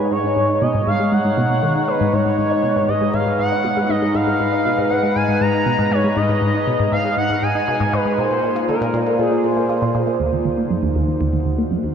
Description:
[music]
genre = ambient, sequencer-driven space music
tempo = 119 BPM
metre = 4/4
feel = straight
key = G# dorian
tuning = A4 = 439 Hz
[part]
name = expressive portamento lead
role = melody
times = 0.0-9.9 s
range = G#4 to A#5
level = -21 LUFS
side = equal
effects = analog chorus, cassette tape, tape echo
[part]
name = sweeping resonant pad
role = sustained chords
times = 0.0-11.9 s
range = G#3 to A#5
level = -20 LUFS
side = equal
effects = chorus, phaser
[part]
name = resonant blip pluck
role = riff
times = 0.0-11.9 s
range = Eb2 to E#4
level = -20 LUFS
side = equal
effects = phaser, tape echo
[sound]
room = wet huge ambient reverb, RT60 7.2 s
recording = dreamy mix soaked in reverb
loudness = -16 LUFS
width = side -7 dB against mid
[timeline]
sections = 0.0-10.2 A section; 10.2-11.9 B section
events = none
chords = 0.0 G#m; 8.2 A#7; 10.2 Ebm

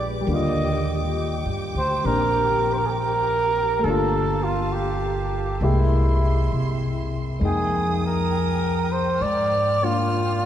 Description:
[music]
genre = jazz ballad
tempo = 67 BPM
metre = 4/4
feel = swing 68% on 8ths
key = unclear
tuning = A4 = 440 Hz
[part]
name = warm flugelhorn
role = melody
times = 0.0-10.5 s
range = E4 to Eb5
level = -24 LUFS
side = right 1 dB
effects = none
[part]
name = dark grand piano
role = accompaniment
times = 0.0-10.5 s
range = D3 to G5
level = -28 LUFS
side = left 2 dB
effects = none
[part]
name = warm symphonic string section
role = sustained chords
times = 0.0-10.5 s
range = Ab3 to F6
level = -33 LUFS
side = left 1 dB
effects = none
[part]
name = upright bass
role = bass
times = 0.0-10.5 s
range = G1 to C3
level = -24 LUFS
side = equal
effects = none
[sound]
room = wet cathedral reverb, RT60 4.9 s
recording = recorded in a church or concert hall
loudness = -20 LUFS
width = side -10 dB against mid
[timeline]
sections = 0.0-10.5 A section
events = none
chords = 0.3 Ebmaj7; 3.8 Gm9; 5.6 C7b13; 7.4 Fm11

